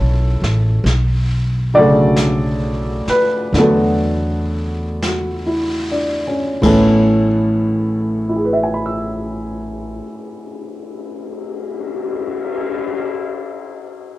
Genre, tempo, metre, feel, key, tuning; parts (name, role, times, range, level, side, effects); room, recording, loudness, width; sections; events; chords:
jazz ballad; 36-48 BPM; 4/4; swing 68% on 8ths; A major; A4 = 440 Hz
warm upright piano; accompaniment; 0.0-14.2 s; A2 to E6; -16 LUFS; equal
upright bass; bass; 0.0-10.0 s; A1 to E2; -20 LUFS; equal
jazz brush drum kit; drums; 0.4-13.0 s; brushed snare drum, crash cymbal, cymbal swell, hi-hat, kick drum, snare drum; -26 LUFS; left 3 dB
wet small room reverb, RT60 0.5 s; home recording on cassette; -15 LUFS; side -16 dB against mid
0.0-6.6 A section; 6.6-13.3 B section
slowing down 0.0-6.6
0.0 F#7sus4; 0.9 Bm9; 3.5 E9sus4; 6.6 Amaj7